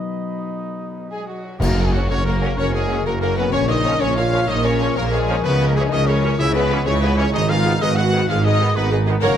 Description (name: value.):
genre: cinematic, heroic adventure film score.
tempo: 126 BPM (dotted quarters).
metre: 12/8.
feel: straight.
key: F# major.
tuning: A4 = 441 Hz.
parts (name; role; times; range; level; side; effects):
dark clarinet; second line; 0.0-9.4 s; D#4 to C#5; -30 LUFS; left 1 dB; none.
dark cor anglais; second line; 0.0-1.4 s; Eb5; -33 LUFS; right 5 dB; none.
silver concert flute; second line; 0.0-9.4 s; Gb5 to F#6; -30 LUFS; left 2 dB; none.
warm French horn section; sustained chords; 0.0-9.4 s; Gb3 to F#4; -25 LUFS; left 4 dB; none.
concert harp; arpeggios; 0.0-9.4 s; F#2 to C#5; -28 LUFS; left 7 dB; none.
clear trumpet; stabs; 0.0-9.4 s; Eb4 to F#5; -28 LUFS; right 2 dB; none.
warm symphonic violin section; melody; 1.1-9.4 s; Gb4 to F#5; -28 LUFS; left 4 dB; none.
dark symphonic violin section; second line; 1.6-9.4 s; B4 to F#5; -32 LUFS; left 1 dB; none.
rich symphonic viola section; accompaniment; 1.6-9.4 s; G#4 to C#5; -28 LUFS; equal; none.
rich symphonic cello section; bass; 1.6-9.3 s; F#2 to C#3; -26 LUFS; right 2 dB; none.
warm symphonic double bass section; bass; 1.6-9.3 s; F#1 to C#2; -22 LUFS; right 3 dB; none.
warm tuba; bass; 1.6-9.3 s; F#1 to C#2; -25 LUFS; right 4 dB; none.
clash cymbals and concert bass drum; percussion; 1.6-2.2 s; none; -28 LUFS; equal; none.
timpani; percussion; 1.6-2.1 s; F#2; -25 LUFS; left 1 dB; none.
clear trombone section; sustained chords; 1.9-9.4 s; D#3 to C#4; -32 LUFS; right 2 dB; none.
room: moderate scoring stage reverb, RT60 1.5 s.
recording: none.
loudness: -16 LUFS.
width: side -9 dB against mid.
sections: 0.0-1.6 A section; 1.6-9.4 B section.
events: band accent 1.6-1.9.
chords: 0.0 Cb; 1.6 F#; 3.5 A#m; 5.4 C#m; 7.3 G#m.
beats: 0.15 0.64 1.12 | 1.61 2.10 2.58 3.06 | 3.54 4.01 4.49 4.97 | 5.45 5.92 6.40 6.87 | 7.34 7.81 8.28 8.76 | 9.23.